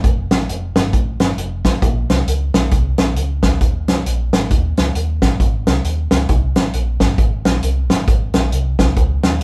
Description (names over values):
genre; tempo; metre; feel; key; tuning
uptempo gospel; 134 BPM; 4/4; swing 61% on 8ths; Ab major; A4 = 440 Hz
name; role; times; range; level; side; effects
hollow-body short-scale fingered electric bass; bass; 0.0-9.4 s; F1 to Eb2; -22 LUFS; equal; none
natural country drum kit; drums; 0.0-9.4 s; hi-hat, kick drum, snare drum; -18 LUFS; equal; none
room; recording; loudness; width
moderate small room reverb, RT60 0.5 s; band playing live in one room; -17 LUFS; mono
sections
0.0-9.4 A section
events
none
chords
none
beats
| 0.04 0.49 0.93 1.38 | 1.83 2.27 2.72 3.17 | 3.61 4.06 4.50 4.95 | 5.40 5.84 6.29 6.74 | 7.18 7.63 8.07 8.52 | 8.97 9.41